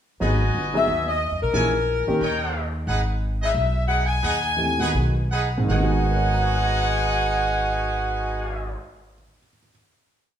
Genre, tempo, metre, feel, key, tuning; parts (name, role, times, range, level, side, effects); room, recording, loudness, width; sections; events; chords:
jazz, big band swing; 153-181 BPM; 4/4; swing 62% on 8ths; G# minor; A4 = 441 Hz
dark grand piano; accompaniment; 0.2-2.2, 4.6-9.7 s; G#2 to A#6; -27 LUFS; right 2 dB
bright trumpet section; stabs; 0.2-8.8 s; D#4 to G#5; -26 LUFS; right 3 dB
upright bass; bass; 0.2-8.7 s; G1 to F#2; -25 LUFS; equal
clear saxophone section; melody; 0.8-8.8 s; F#4 to G#5; -24 LUFS; left 3 dB
wet large studio reverb, RT60 1.3 s; band playing live in one room; -20 LUFS; side -9 dB against mid
0.2-5.7 A section; 5.7-8.8 final chord
slowing down 2.9-5.7
0.2 G#m7; 1.5 A#m7b5; 2.2 D#7; 2.9 G#m7